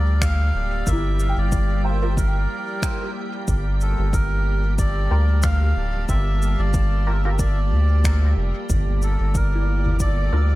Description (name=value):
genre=ambient dub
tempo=92 BPM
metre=4/4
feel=swing 56% on 16ths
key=G dorian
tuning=A4 = 440 Hz
part: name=melodica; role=melody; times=0.0-10.6 s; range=A4 to F5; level=-29 LUFS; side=right 1 dB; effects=dub echo
part: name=soft additive organ-like pad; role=sustained chords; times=0.0-10.6 s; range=F3 to A5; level=-31 LUFS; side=left 1 dB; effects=ensemble chorus, built-in reverb
part: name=soft synth bell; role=arpeggios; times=0.0-10.6 s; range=E4 to E6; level=-35 LUFS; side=left 3 dB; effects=chorus, vintage 12-bit sampler grit, dub echo
part: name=filtered dub chord stab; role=stabs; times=0.0-10.5 s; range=D4 to Bb4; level=-36 LUFS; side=right 1 dB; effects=none
part: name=round analog bass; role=bass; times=0.0-10.6 s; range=D1 to D2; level=-19 LUFS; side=equal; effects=tube saturation
part: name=electronic kick drum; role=drums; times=0.2-10.1 s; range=none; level=-24 LUFS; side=equal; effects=overdrive, studio reverb
part: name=soft-mallet drum kit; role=drums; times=0.2-10.1 s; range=cabasa, finger snaps, toms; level=-32 LUFS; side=left 1 dB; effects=studio reverb
part: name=wind-like tuned noise texture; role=texture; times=9.2-10.6 s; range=D5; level=-36 LUFS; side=right 9 dB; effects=built-in reverb
room=little or no reverb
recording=echo-heavy mix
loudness=-18 LUFS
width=side -18 dB against mid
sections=0.0-10.6 A section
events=none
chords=0.0 Gm7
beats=0.22 | 0.87 1.52 2.17 2.83 | 3.48 4.13 4.78 5.43 | 6.09 6.74 7.39 8.04 | 8.70 9.35 10.00